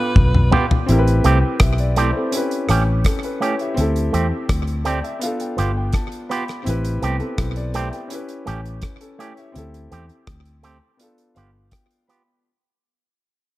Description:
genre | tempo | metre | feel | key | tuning
lovers rock reggae | 83 BPM | 4/4 | straight | A minor | A4 = 440 Hz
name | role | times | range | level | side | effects
edgy alto saxophone | melody | 0.0-0.5 s | B4 | -28 LUFS | right 2 dB | tape echo
warm concert grand piano | accompaniment | 0.0-12.5 s | B3 to B5 | -25 LUFS | left 1 dB | none
vintage muted fingered electric bass | bass | 0.2-11.7 s | G1 to E2 | -19 LUFS | equal | none
damped 70s drum kit | drums | 0.2-12.3 s | hi-hat, kick drum, rim click, toms | -19 LUFS | left 1 dB | none
electric guitar with an envelope filter | stabs | 0.5-12.2 s | A3 to G4 | -24 LUFS | right 4 dB | spring reverb
room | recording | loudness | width
light reverb | none | -17 LUFS | side -17 dB against mid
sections
0.9-12.4 A section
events
drum fill 0.0-0.9; fade-out 0.9-12.4; grand piano fill 4.5-6.7, 11.0-12.4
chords
0.0 G7; 0.9 Am7; 2.3 A7; 3.8 D7sus4; 5.2 G7; 6.7 Am7; 8.1 A7; 9.6 D7sus4; 11.0 G7

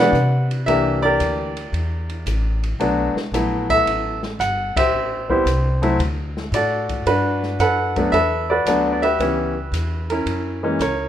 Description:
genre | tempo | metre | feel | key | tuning
jazz piano trio | 113 BPM | 4/4 | swing 68% on 8ths | G major | A4 = 436 Hz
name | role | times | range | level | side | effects
clear baby grand piano | melody | 0.0-11.1 s | E3 to F#5 | -18 LUFS | equal | none
upright bass | bass | 0.0-11.1 s | G1 to C3 | -24 LUFS | equal | none
open jazz drum kit | drums | 0.1-11.0 s | hi-hat, kick drum, ride cymbal, snare drum | -30 LUFS | equal | none
room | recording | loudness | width
moderate large studio reverb, RT60 0.9 s | minimal, uncompressed stereo recording | -18 LUFS | side -10 dB against mid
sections
0.0-11.1 A section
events
band accent 4.7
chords
0.0 Cmaj9; 0.7 C9; 2.8 B7(no3); 4.9 Am7; 6.0 D; 7.1 Gmaj9; 9.2 C#m7b5; 10.3 F#7

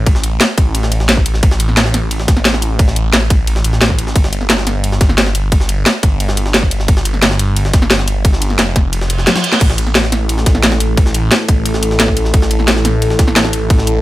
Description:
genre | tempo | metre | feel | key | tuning
dark technical drum and bass | 176 BPM | 4/4 | straight | unclear | A4 = 440 Hz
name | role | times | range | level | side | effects
phased detuned saw bass | bass | 0.0-14.0 s | F1 to A1 | -16 LUFS | equal | phaser, sidechain pumping
drum and bass drum kit | drums | 0.1-13.9 s | crash cymbal, hi-hat, snare drum, toms | -14 LUFS | equal | overdrive
electronic kick drum | drums | 0.1-13.8 s | none | -11 LUFS | equal | overdrive
jungle sampler-style drum kit | drums | 0.1-13.9 s | ride cymbal, snare drum | -22 LUFS | equal | overdrive, high-pass filter on cymbals, high-pass filter on snare
reverse cymbal | sound effects | 9.1-9.6 s | none | -20 LUFS | right 4 dB | none
dark analog pad | sustained chords | 9.8-14.0 s | A3 to A4 | -20 LUFS | equal | chorus, phaser, sidechain pumping
room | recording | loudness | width
little or no reverb | none | -11 LUFS | side -16 dB against mid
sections
0.0-14.0 A section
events
reverse cymbal 9.1-9.6; drum fill 9.3-9.6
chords
0.0 N.C.; 4.2 Fsus2; 9.6 A5

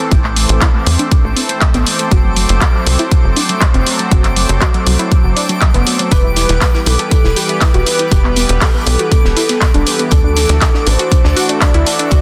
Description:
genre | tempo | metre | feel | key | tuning
progressive house | 120 BPM | 4/4 | straight | E minor | A4 = 440 Hz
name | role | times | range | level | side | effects
supersaw pad | sustained chords | 0.0-12.2 s | E3 to C5 | -23 LUFS | equal | sidechain pumping
analog pluck | arpeggios | 0.0-12.2 s | F#3 to B4 | -23 LUFS | equal | chorus, sidechain pumping, delay
twinkling granular texture | texture | 0.0-12.2 s | D6 | -27 LUFS | equal | built-in reverb, sidechain pumping
tight sequencer bass | bass | 0.1-12.2 s | E1 to E2 | -17 LUFS | equal | tube saturation, sidechain pumping
electronic kick drum | drums | 0.1-12.2 s | none | -14 LUFS | equal | small room ambience
house drum kit | drums | 0.1-12.2 s | handclaps, hi-hat | -20 LUFS | equal | small room ambience
warm velvety synth lead | melody | 6.1-12.2 s | A4 to D5 | -22 LUFS | equal | chorus, cassette tape, sidechain pumping, dub echo
loose indie drum kit | drums | 6.1-12.2 s | hi-hat, snare drum | -30 LUFS | equal | none
room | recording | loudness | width
light reverb, digital ambience | dense, heavily limited modern master | -12 LUFS | mono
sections
0.0-12.2 A section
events
filter sweep on synth pluck 0.0-12.2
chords
0.0 Am; 2.1 F#dim; 6.1 Em; 10.1 Dadd9

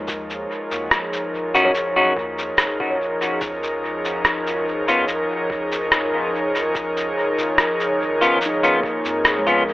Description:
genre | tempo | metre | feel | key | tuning
ambient dub | 72 BPM | 4/4 | straight | unclear | A4 = 440 Hz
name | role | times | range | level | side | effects
airy breathy pad | sustained chords | 0.0-9.7 s | F3 to Db5 | -22 LUFS | equal | chorus
handpan | arpeggios | 0.0-9.7 s | Ab3 to Db5 | -29 LUFS | equal | dub echo
soft dub sub bass | bass | 0.0-9.7 s | Ab1 to F2 | -42 LUFS | equal | none
electronic kick drum | drums | 0.1-9.6 s | none | -34 LUFS | equal | small room ambience
electronic shaker and rim click | drums | 0.1-9.6 s | none | -21 LUFS | equal | small room ambience, dub echo
clean electric guitar | stabs | 1.5-9.6 s | Cb4 to Gb4 | -20 LUFS | left 1 dB | dub echo
room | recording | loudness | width
moderate spring reverb, RT60 2.6 s | echo-heavy mix, telephone sound | -18 LUFS | side -18 dB against mid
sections
0.0-9.7 A section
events
none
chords
0.0 Eb7(no3); 3.4 Db

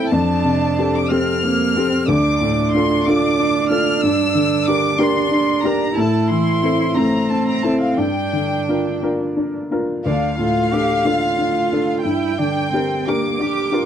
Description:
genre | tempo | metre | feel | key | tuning
neoclassical piano and strings | 61 BPM (dotted quarters) | 6/8 | rubato | G dorian | A4 = 442 Hz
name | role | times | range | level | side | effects
warm chamber violin section | melody | 0.0-13.9 s | F5 to F6 | -22 LUFS | left 1 dB | none
dark cello | second line | 0.0-13.9 s | Bb3 to G4 | -22 LUFS | right 9 dB | none
warm upright piano | accompaniment | 0.0-13.9 s | D2 to Bb4 | -18 LUFS | left 2 dB | none
room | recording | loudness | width
little or no reverb | dry, close 1970s-style studio recording | -16 LUFS | side -9 dB against mid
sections
0.0-10.0 A section; 10.0-13.9 B section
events
none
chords
0.1 Fadd9; 2.1 Dm; 4.0 Gm; 6.0 Am; 8.0 Gm7; 10.0 Dm; 12.0 Gm

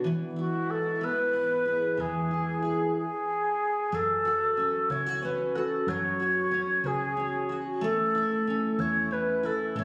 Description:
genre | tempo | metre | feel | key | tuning
six-eight pop ballad | 62 BPM (dotted quarters) | 6/8 | straight | unclear | A4 = 441 Hz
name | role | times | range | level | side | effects
picked steel-string acoustic guitar | accompaniment | 0.0-9.8 s | E3 to C#5 | -34 LUFS | equal | double-tracked
chorused pulse-width pad | sustained chords | 0.0-2.9 s | G#2 to E4 | -40 LUFS | equal | none
vintage muted fingered electric bass | bass | 0.0-9.8 s | A1 to F#2 | -41 LUFS | equal | none
bright reedy wooden-headed alto flute | melody | 0.4-9.8 s | F#4 to C#5 | -29 LUFS | equal | tape echo
room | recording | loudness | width
light reverb, studio reverb | recorded on a phone in the room | -28 LUFS | mono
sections
0.0-3.9 A section; 3.9-9.8 B section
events
none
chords
0.0 E; 3.9 F#m; 7.8 A

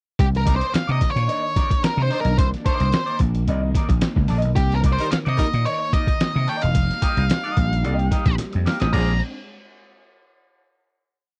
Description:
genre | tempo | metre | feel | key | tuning
funk | 110 BPM | 4/4 | straight | unclear | A4 = 441 Hz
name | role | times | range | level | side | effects
octave-fuzz lead guitar | melody | 0.2-9.2 s | G4 to Bb5 | -27 LUFS | equal | distortion
phased string machine | sustained chords | 0.2-9.2 s | Eb3 to Eb4 | -35 LUFS | equal | ensemble chorus, phaser
vintage slap bass | bass | 0.2-9.2 s | E1 to C3 | -23 LUFS | equal | none
lo-fi sampler-style drum kit | drums | 0.2-9.1 s | crash cymbal, hi-hat, kick drum, snare drum | -24 LUFS | equal | none
clean electric guitar | accompaniment | 0.5-9.1 s | Eb4 to F5 | -32 LUFS | equal | wah
warm horn section | second line | 5.0-5.5, 8.9-9.1 s | F3 to Bb4 | -29 LUFS | equal | none
room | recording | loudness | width
little or no reverb | dry, close 1970s-style studio recording | -21 LUFS | mono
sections
0.2-8.9 bridge; 8.9-11.1 final chord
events
drum fill 8.4-8.9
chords
0.2 Cm9; 6.7 F9sus4; 8.9 Bb7

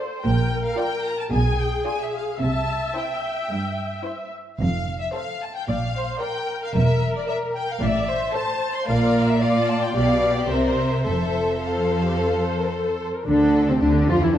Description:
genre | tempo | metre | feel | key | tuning
quick classical-period movement for symphony orchestra | 111 BPM | 4/4 | straight | F major | A4 = 440 Hz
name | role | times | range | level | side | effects
rich studio violin section | second line | 0.0-14.4 s | C4 to D5 | -26 LUFS | left 2 dB | none
warm studio viola section | accompaniment | 0.0-14.4 s | C4 to E5 | -26 LUFS | equal | none
rich studio violin section | melody | 0.2-14.4 s | G4 to C6 | -29 LUFS | left 3 dB | none
clear studio double bass section | bass | 0.2-14.4 s | E1 to F2 | -25 LUFS | right 2 dB | none
rich studio cello section | bass | 0.2-14.4 s | E2 to F3 | -25 LUFS | right 1 dB | none
bright clarinet | second line | 13.3-14.4 s | C4 to F4 | -21 LUFS | equal | none
warm French horn section | sustained chords | 13.3-14.4 s | C3 to F3 | -27 LUFS | left 4 dB | none
room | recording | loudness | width
moderate scoring stage reverb, RT60 1.5 s | dark, warm production | -20 LUFS | side -11 dB against mid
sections
0.0-13.3 A section; 13.3-14.4 B section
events
none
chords
0.2 Bb6; 1.3 Bdim7; 2.4 C; 4.6 F; 5.7 Bb; 6.8 E7(b5, no3); 7.8 Am; 8.9 Bb; 10.0 G7/B; 10.5 C7; 11.1 F; 13.3 Dm

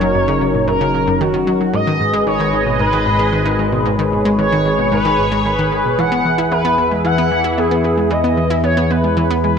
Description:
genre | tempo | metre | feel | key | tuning
ambient, sequencer-driven space music | 113 BPM | 4/4 | straight | unclear | A4 = 441 Hz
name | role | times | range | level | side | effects
expressive portamento lead | melody | 0.0-9.6 s | F#4 to F#5 | -18 LUFS | equal | analog chorus, tape echo
sweeping resonant pad | sustained chords | 0.0-9.6 s | E3 to D#5 | -18 LUFS | left 1 dB | chorus
analog pluck | riff | 0.0-9.5 s | F#2 to E4 | -19 LUFS | equal | chorus, tape echo
analog drone | bass | 0.0-9.6 s | F#1 to E2 | -22 LUFS | equal | chorus
room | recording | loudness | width
wet plate reverb, RT60 2.8 s | cassette tape | -13 LUFS | side -6 dB against mid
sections
0.0-9.6 A section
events
none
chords
0.0 F#6; 1.7 G#m; 6.0 E

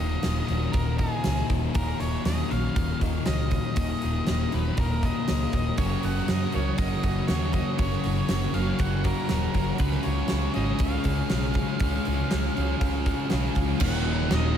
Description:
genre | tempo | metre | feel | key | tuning
rock, shoegaze and dream pop | 119 BPM | 4/4 | straight | Eb minor | A4 = 443 Hz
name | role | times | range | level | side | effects
octave-fuzz lead guitar | melody | 0.0-14.6 s | Ab4 to Gb5 | -34 LUFS | right 2 dB | distortion, ping-pong delay
direct-recorded clean electric guitar | arpeggios | 0.0-14.6 s | Eb2 to Ab4 | -39 LUFS | right 8 dB | none
thick fuzz guitar | riff | 0.0-14.6 s | Eb2 to Db4 | -29 LUFS | left 6 dB | distortion, wide subtle chorus
vintage muted fingered electric bass | bass | 0.0-14.5 s | Eb1 to Gb2 | -28 LUFS | right 1 dB | none
huge arena drum kit | drums | 0.2-14.4 s | crash cymbal, hi-hat, kick drum, snare drum | -28 LUFS | right 1 dB | none
overdriven electric guitar | riff | 5.8-14.6 s | Eb2 to Ab4 | -32 LUFS | right 9 dB | reverse reverb
overdriven semi-hollow guitar | riff | 13.8-14.6 s | Eb2 to Eb3 | -31 LUFS | right 2 dB | ensemble chorus
room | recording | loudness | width
light reverb, studio reverb | none | -23 LUFS | side -9 dB against mid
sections
0.0-13.8 A section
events
none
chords
0.0 Ebm; 9.8 Db; 13.8 Ebm

